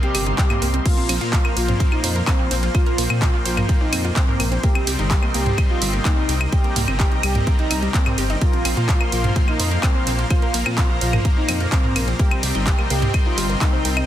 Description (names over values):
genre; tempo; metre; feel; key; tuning
melodic techno; 127 BPM; 4/4; straight; unclear; A4 = 440 Hz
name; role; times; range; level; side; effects
expressive synth lead; melody; 0.0-13.9 s; C4 to G4; -27 LUFS; right 1 dB; lush chorus, sidechain pumping, digital delay
lush unison pad; sustained chords; 0.0-14.1 s; Bb4 to C6; -30 LUFS; equal; chorus, sidechain pumping
wide unison pluck; arpeggios; 0.0-14.1 s; G3 to C6; -30 LUFS; right 1 dB; cassette tape, sidechain pumping, ping-pong delay
brassy analog pad; stabs; 0.0-14.1 s; Bb2 to C4; -28 LUFS; left 2 dB; chorus, sidechain pumping, ping-pong delay
house drum kit; drums; 0.0-14.1 s; claves, crash cymbal, handclaps, hi-hat, ride cymbal, toms; -24 LUFS; equal; overdrive, sidechain pumping on hats, sidechain pumping on perc, sidechain pumping on toms, sidechain pumping on cymbals
swelling detuned saw bass; bass; 0.1-14.0 s; G1 to Bb2; -22 LUFS; equal; sidechain pumping
electronic kick drum; drums; 0.4-13.7 s; none; -18 LUFS; equal; overdrive
room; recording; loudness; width
light reverb; dense, heavily limited modern master; -17 LUFS; side -12 dB against mid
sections
0.0-14.1 A section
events
none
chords
0.0 Cm7; 0.9 Bbsus2; 4.6 Cm7; 8.4 Bbsus2; 12.2 Cm7